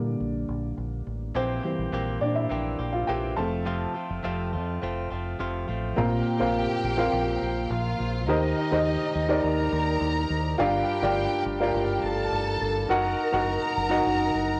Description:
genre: pop.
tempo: 104 BPM.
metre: 4/4.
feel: straight.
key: Bb major.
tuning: A4 = 440 Hz.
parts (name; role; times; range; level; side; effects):
warm upright piano; accompaniment; 0.0-14.6 s; G2 to A5; -28 LUFS; equal; cassette tape.
deep dub fingered electric bass; bass; 0.0-14.6 s; F1 to Bb2; -33 LUFS; equal; none.
direct-recorded clean electric guitar; riff; 1.4-6.0 s; F2 to G4; -35 LUFS; equal; cassette tape.
rich studio violin section; second line; 6.0-14.6 s; Eb4 to Bb5; -33 LUFS; equal; cassette tape, tape echo.
room: moderate spring reverb, RT60 1.7 s, small room ambience.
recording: home recording on cassette.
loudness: -26 LUFS.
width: mono.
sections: 0.0-6.0 A section; 6.0-14.6 B section.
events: upright piano solo 0.0-6.0.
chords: 0.0 Gm/Bb; 1.4 C/Bb; 3.4 F; 6.0 Bbsus2; 8.3 Eb6; 10.6 Gm7; 12.9 Ebm/Gb.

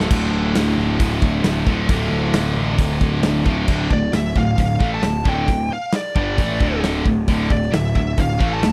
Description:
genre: heavy metal.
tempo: 134 BPM.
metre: 4/4.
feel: straight.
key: D minor.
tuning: A4 = 441 Hz.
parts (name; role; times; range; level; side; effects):
cranked stack guitar; riff; 0.0-8.7 s; D2 to F4; -26 LUFS; equal; overdrive.
tight distorted guitar; riff; 0.0-8.7 s; D2 to A3; -26 LUFS; equal; distortion.
fuzz picked electric bass; bass; 0.0-8.7 s; D1 to A1; -25 LUFS; equal; overdrive.
big rock drum kit; drums; 0.0-8.7 s; crash cymbal, hi-hat, kick drum, snare drum; -23 LUFS; equal; none.
high-gain lead guitar; melody; 3.9-8.7 s; D5 to A5; -28 LUFS; equal; distortion.
room: small room ambience.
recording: dry, close 1970s-style studio recording.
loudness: -19 LUFS.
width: mono.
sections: 0.1-3.7 A section; 3.7-8.7 B section.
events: none.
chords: 0.1 Dm.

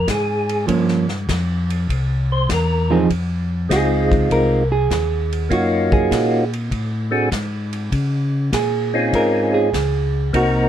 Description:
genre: soul jazz organ trio.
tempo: 99 BPM.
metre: 4/4.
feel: swing 68% on 8ths.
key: F minor.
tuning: A4 = 440 Hz.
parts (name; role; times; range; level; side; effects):
percussive tonewheel organ; melody; 0.0-10.7 s; Ab3 to C5; -18 LUFS; left 1 dB; slow rotary speaker.
mellow tonewheel organ; bass; 0.0-10.7 s; C2 to Db3; -21 LUFS; left 1 dB; overdrive, chorus vibrato, slow rotary speaker.
warm soul drum kit; drums; 0.1-10.5 s; hi-hat, kick drum, ride cymbal, snare drum; -26 LUFS; left 1 dB; none.
hollow-body jazz guitar; accompaniment; 0.7-10.7 s; F3 to Bb4; -20 LUFS; right 5 dB; none.
room: moderate booth ambience, RT60 0.2 s.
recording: none.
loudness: -16 LUFS.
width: side -10 dB against mid.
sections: 0.0-3.1 A section; 3.1-10.7 A section.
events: tonewheel organ solo 0.0-3.1; hollow-body jazz guitar solo 3.1-10.7.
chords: 0.0 Bb7(no3); 0.7 Gm7b5; 1.9 C; 3.1 Fm7; 5.5 Ebm7; 6.7 D7#11; 7.9 Dbmaj7.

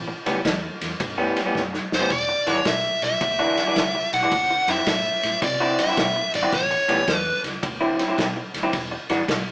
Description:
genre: electric blues shuffle.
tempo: 109 BPM.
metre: 4/4.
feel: swing 66% on 8ths.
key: A mixolydian.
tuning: A4 = 440 Hz.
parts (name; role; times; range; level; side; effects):
vintage muted fingered electric bass; bass; 0.0-9.5 s; E1 to C3; -40 LUFS; equal; none.
electric guitar through a small old amp; riff; 0.1-9.3 s; A2 to F#4; -27 LUFS; equal; none.
vintage drum kit; drums; 0.3-9.5 s; kick drum, ride cymbal, snare drum; -28 LUFS; equal; none.
biting lead guitar; melody; 1.9-7.4 s; C5 to F#5; -24 LUFS; equal; overdrive.
room: wet studio reverb, RT60 0.7 s.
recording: band playing live in one room, small speaker sound.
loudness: -22 LUFS.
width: mono.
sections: 0.0-9.5 A section.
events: drum fill 1.6-2.1.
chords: 0.0 A9; 2.1 E9; 4.3 D9; 6.5 A9; 7.6 D9; 8.7 E9.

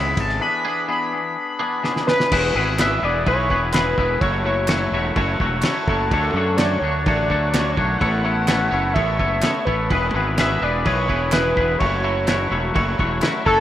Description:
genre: indie rock.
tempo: 126 BPM.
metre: 4/4.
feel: straight.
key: unclear.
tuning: A4 = 441 Hz.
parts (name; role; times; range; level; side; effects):
sync lead; melody; 0.0-13.6 s; A4 to B5; -23 LUFS; equal; chorus.
twangy electric guitar; riff; 0.0-13.6 s; C#3 to C#5; -23 LUFS; left 7 dB; none.
twangy electric guitar; riff; 0.0-13.6 s; D3 to C#5; -27 LUFS; right 6 dB; analog chorus.
fuzz fingered electric bass; bass; 0.0-13.6 s; E1 to F#2; -24 LUFS; right 1 dB; overdrive.
cloth-damped thuddy drum kit; drums; 0.2-13.6 s; crash cymbal, kick drum, ride cymbal, snare drum; -24 LUFS; right 1 dB; none.
group handclap; percussion; 2.8-13.3 s; none; -31 LUFS; right 2 dB; none.
room: small room ambience.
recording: rough home demo mix.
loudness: -17 LUFS.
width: side -12 dB against mid.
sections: 0.0-2.3 A section; 2.3-13.6 B section.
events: analog synth lead solo 0.0-2.3; drum fill 1.8-2.3.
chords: 0.4 E7; 2.3 E; 4.2 F#m7; 6.1 Dmaj7; 8.0 Aadd9; 9.9 E; 11.8 F#m7.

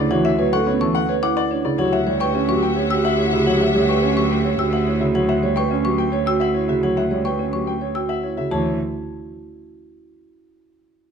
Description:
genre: classical, minimalist pattern music.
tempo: 107 BPM.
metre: 3/4.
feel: straight.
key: D major.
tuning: A4 = 440 Hz.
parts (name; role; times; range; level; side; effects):
bright baby grand piano; melody; 0.0-8.8 s; G4 to G5; -26 LUFS; left 6 dB; none.
dark grand piano; accompaniment; 0.0-8.8 s; C#3 to C#4; -25 LUFS; left 2 dB; none.
marimba with medium mallets; arpeggios; 0.0-8.8 s; C#4 to C#5; -23 LUFS; right 5 dB; none.
rich cello; bass; 0.0-8.8 s; D2; -23 LUFS; right 3 dB; none.
xylophone with plastic mallets; arpeggios; 0.1-8.8 s; E5 to E6; -28 LUFS; left 7 dB; none.
mellow wooden-headed alto flute; second line; 1.8-5.0 s; G4; -24 LUFS; right 1 dB; none.
rich studio string section; sustained chords; 1.8-5.0 s; E5 to F#5; -27 LUFS; left 4 dB; none.
room: moderate large studio reverb, RT60 1.4 s.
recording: dark, warm production.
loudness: -17 LUFS.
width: side -6 dB against mid.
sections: 0.0-8.5 A section; 8.5-10.2 B section.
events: none.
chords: 0.0 Dmaj9; 1.8 Emadd9/D; 8.5 Dsus2.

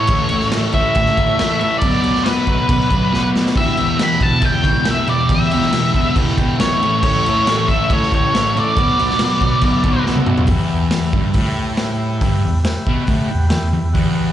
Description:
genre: garage rock duo or trio.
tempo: 139 BPM.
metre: 4/4.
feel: straight.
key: E dorian, E minor from 10.5 s.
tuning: A4 = 440 Hz.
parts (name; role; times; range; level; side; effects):
octave-fuzz lead guitar; melody; 0.0-10.0 s; B4 to B5; -18 LUFS; equal; distortion, slapback echo, tape echo.
combo organ; sustained chords; 0.0-14.3 s; F#4 to B5; -28 LUFS; equal; none.
fuzz guitar; riff; 0.0-14.3 s; E2 to B3; -18 LUFS; equal; distortion, slapback echo.
raw garage drum kit; drums; 0.1-14.1 s; crash cymbal, hi-hat, kick drum, snare drum, toms; -18 LUFS; equal; none.
room: small room ambience.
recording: live gig heard through the venue's PA, club reverb, nothing above 11.0 kHz.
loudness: -14 LUFS.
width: side -11 dB against mid.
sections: 0.0-10.5 A section; 10.5-14.3 B section.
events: transistor combo organ fill 2.7-3.6, 12.7-14.0; drum fill 3.1-3.6, 10.1-10.5.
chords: 0.0 A; 1.8 Bm; 3.6 Em; 6.8 A; 8.8 Bm; 10.5 Em.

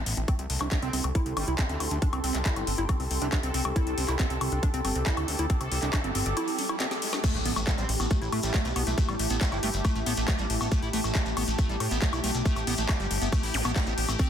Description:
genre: psychedelic trance.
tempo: 138 BPM.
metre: 4/4.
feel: straight.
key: A minor.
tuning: A4 = 438 Hz.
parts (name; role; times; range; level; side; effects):
liquid acid bass; riff; 0.0-14.3 s; G3 to E4; -33 LUFS; moving between left 3 dB and right 4 dB; chorus, auto-pan, sidechain pumping, tape echo.
fat analog bass; bass; 0.0-14.2 s; G1 to A2; -30 LUFS; equal; none.
airy breathy pad; texture; 0.0-14.3 s; A3 to D6; -36 LUFS; equal; chorus, sidechain pumping.
garage drum kit; drums; 0.1-14.3 s; crash cymbal, handclaps, hi-hat, snare drum, woodblock; -32 LUFS; left 3 dB; studio reverb.
bubbling stepped-filter texture; sustained chords; 0.5-14.3 s; G4 to A4; -36 LUFS; equal; chorus, built-in reverb, sidechain pumping.
electronic kick drum; drums; 0.3-14.3 s; none; -26 LUFS; equal; studio reverb.
metallic wobble bass; second line; 0.8-3.4, 7.8-9.7 s; E3 to C4; -43 LUFS; right 4 dB; none.
riser, impact and zap; sound effects; 5.6-9.0, 13.5-13.7 s; none; -38 LUFS; right 1 dB; none.
shekere; percussion; 7.2-14.3 s; none; -38 LUFS; left 3 dB; none.
room: light reverb.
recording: dense, heavily limited modern master.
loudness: -25 LUFS.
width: side -9 dB against mid.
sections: 0.0-7.2 A section; 7.2-14.3 B section.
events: riser 5.6-7.2; drum fill 6.8-7.2; drop 7.2-14.3; impact 7.2-9.0.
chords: 0.3 C5; 7.2 A5.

